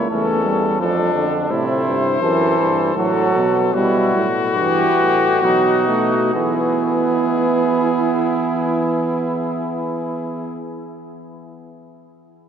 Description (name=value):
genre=classical, imitative canzona for brass ensemble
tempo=62-86 BPM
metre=3/4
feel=straight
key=unclear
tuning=A4 = 444 Hz
part: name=warm cornet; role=melody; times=0.0-10.6 s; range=F#4 to C5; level=-21 LUFS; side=left 5 dB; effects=none
part: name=mellow trumpet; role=second line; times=0.0-10.6 s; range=C#4 to A4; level=-24 LUFS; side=right 3 dB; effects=none
part: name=clear trombone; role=accompaniment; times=0.0-10.6 s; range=C3 to B3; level=-21 LUFS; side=right 3 dB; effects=none
part: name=mellow euphonium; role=bass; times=0.0-10.6 s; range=E2 to E3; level=-23 LUFS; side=right 2 dB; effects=none
room=wet cathedral reverb, RT60 4.9 s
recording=none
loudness=-15 LUFS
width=side -8 dB against mid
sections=0.0-6.3 A section; 6.3-12.1 B section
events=slowing down 0.5-6.3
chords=0.0 A/C#; 0.8 Dm/F; 1.5 Am; 3.0 F#madd11/A; 3.7 Em; 5.4 B; 6.3 E